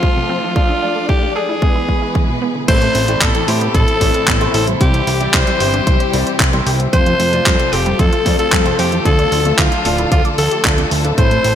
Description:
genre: italo disco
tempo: 113 BPM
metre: 4/4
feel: straight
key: unclear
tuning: A4 = 441 Hz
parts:
  - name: raspy alto saxophone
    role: melody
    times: 0.0-11.6 s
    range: F4 to C5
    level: -18 LUFS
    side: left 2 dB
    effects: digital delay
  - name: warm studio string section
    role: sustained chords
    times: 0.0-11.6 s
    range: C3 to D5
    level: -22 LUFS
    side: left 2 dB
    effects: none
  - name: analog pluck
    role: arpeggios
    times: 0.0-11.5 s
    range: B2 to D5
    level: -24 LUFS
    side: right 5 dB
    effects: chorus, digital delay
  - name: clear baby grand piano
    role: stabs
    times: 0.0-11.5 s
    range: A2 to E5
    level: -23 LUFS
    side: left 1 dB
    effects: analog chorus
  - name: electronic kick drum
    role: drums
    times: 0.0-11.3 s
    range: none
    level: -16 LUFS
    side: equal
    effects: overdrive, studio reverb
  - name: fat analog bass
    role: bass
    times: 2.7-11.6 s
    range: D1 to A2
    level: -19 LUFS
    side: equal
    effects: none
  - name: clean 12-bit digital drum machine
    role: drums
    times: 2.7-11.6 s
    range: crash cymbal, handclaps, hi-hat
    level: -19 LUFS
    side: equal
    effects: studio reverb, gated reverb
room: light reverb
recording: bright 1980s-style digital production, faint mains hum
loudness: -12 LUFS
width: side -10 dB against mid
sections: 0.0-2.7 A section; 2.7-11.6 B section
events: none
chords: 0.0 F; 0.6 Dm; 1.6 E; 2.7 Am; 4.8 C; 6.9 F; 9.1 Dm

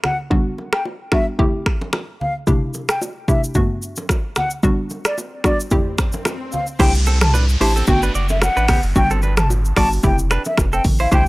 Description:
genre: afrobeats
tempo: 111 BPM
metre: 4/4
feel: swing 55% on 16ths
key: unclear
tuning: A4 = 440 Hz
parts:
  - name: hollow concert flute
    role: melody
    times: 0.0-11.3 s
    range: D5 to A5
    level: -22 LUFS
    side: left 1 dB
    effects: none
  - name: hollow square pluck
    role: accompaniment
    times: 0.0-11.3 s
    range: F2 to G4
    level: -21 LUFS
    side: equal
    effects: chorus
  - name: deep house drum kit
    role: drums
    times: 0.0-11.3 s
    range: crash cymbal, finger snaps, hi-hat, kick drum, rim click, shaker, toms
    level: -19 LUFS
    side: equal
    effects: none
  - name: bongos and congas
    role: percussion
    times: 0.0-11.3 s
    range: none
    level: -27 LUFS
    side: right 1 dB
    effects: none
  - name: swell and downlifter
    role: sound effects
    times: 5.2-11.1 s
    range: none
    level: -30 LUFS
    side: left 1 dB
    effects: none
  - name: direct-recorded clean electric guitar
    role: riff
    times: 6.8-11.2 s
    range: B3 to D5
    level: -24 LUFS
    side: right 4 dB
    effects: none
  - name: saturated sub bass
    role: bass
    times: 6.8-11.3 s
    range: F1 to C2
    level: -18 LUFS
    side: equal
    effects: none
room: little or no reverb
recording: dry, gritty hardware recording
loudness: -16 LUFS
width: side -21 dB against mid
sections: 0.0-6.8 A section; 6.8-11.3 B section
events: swell 5.2-6.8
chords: 0.0 Gmaj7; 1.4 Fmaj9; 2.5 C69; 3.6 Gmaj7; 5.7 Fmaj9; 6.8 C69; 7.9 Gmaj7; 9.0 Gmaj9; 10.0 Fmaj9

